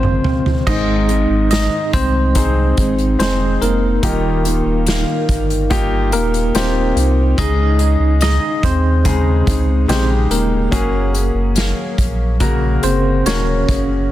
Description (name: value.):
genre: pop ballad.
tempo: 72 BPM.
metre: 4/4.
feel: straight.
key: Ab major.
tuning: A4 = 440 Hz.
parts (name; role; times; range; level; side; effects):
barky tine electric piano; melody; 0.0-14.1 s; Bb3 to Eb5; -20 LUFS; right 1 dB; fast stereo tremolo.
clear baby grand piano; accompaniment; 0.0-14.1 s; Ab2 to C5; -21 LUFS; left 3 dB; none.
fingerpicked steel-string acoustic guitar; arpeggios; 0.0-14.1 s; Ab2 to Ab4; -24 LUFS; right 1 dB; digital delay.
warm sub bass; bass; 0.0-14.1 s; Eb1 to Eb2; -17 LUFS; equal; none.
unplugged drum kit; drums; 0.0-13.9 s; crash cymbal, hi-hat, kick drum, snare drum, toms; -20 LUFS; equal; none.
room: small room ambience.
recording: dense, heavily limited modern master.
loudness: -13 LUFS.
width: side -14 dB against mid.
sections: 0.7-14.1 A section.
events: drum fill 0.0-0.7.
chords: 0.0 Dbmaj7; 0.7 Ab; 4.0 Ebadd9; 7.4 Dbsus2; 10.7 Gbadd9.